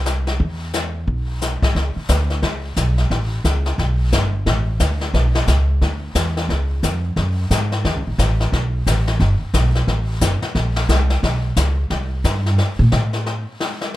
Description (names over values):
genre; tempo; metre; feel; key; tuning
jazz piano trio; 177 BPM; 4/4; swing 62% on 8ths; unclear; A4 = 437 Hz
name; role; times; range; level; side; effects
upright bass; bass; 0.0-13.4 s; F#1 to Bb2; -18 LUFS; equal; none
jazz brush drum kit; drums; 0.1-14.0 s; brushed snare drum, hi-hat, kick drum, snare drum; -22 LUFS; left 2 dB; none
room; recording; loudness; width
little or no reverb; none; -17 LUFS; side -15 dB against mid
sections
0.0-1.8 A section; 1.8-12.6 B section; 12.6-14.0 C section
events
upright bass solo 12.6-14.0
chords
none